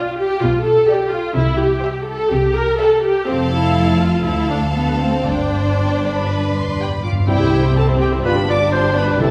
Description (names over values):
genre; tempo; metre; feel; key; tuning
quick classical-period movement for symphony orchestra; 122 BPM; 4/4; uneven beats, rubato; C major; A4 = 440 Hz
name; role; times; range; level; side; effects
warm studio violin section; melody; 0.0-9.3 s; F5 to D6; -31 LUFS; equal; none
clear studio violin section; second line; 0.0-9.3 s; C4 to F5; -26 LUFS; equal; none
warm studio viola section; accompaniment; 0.0-9.3 s; G3 to C5; -21 LUFS; equal; none
rich studio double bass section; bass; 0.4-9.3 s; F1 to D2; -25 LUFS; equal; none
warm studio cello section; bass; 0.4-9.3 s; D2 to C3; -25 LUFS; equal; none
timpani; percussion; 1.4-2.0, 6.3-9.3 s; G2 to C3; -26 LUFS; equal; none
warm clarinet; second line; 6.8-9.3 s; F4 to D5; -23 LUFS; equal; none
mellow French horn section; sustained chords; 7.3-9.3 s; G3 to F4; -27 LUFS; equal; none
room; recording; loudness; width
wet concert hall reverb, RT60 2.0 s; none; -17 LUFS; mono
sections
0.0-7.3 A section; 7.3-9.3 B section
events
timpani fill 6.3-7.3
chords
0.0 G7; 1.4 C; 2.3 C7; 3.3 F; 4.3 Dm; 5.3 Gsus4; 7.3 C; 8.2 G7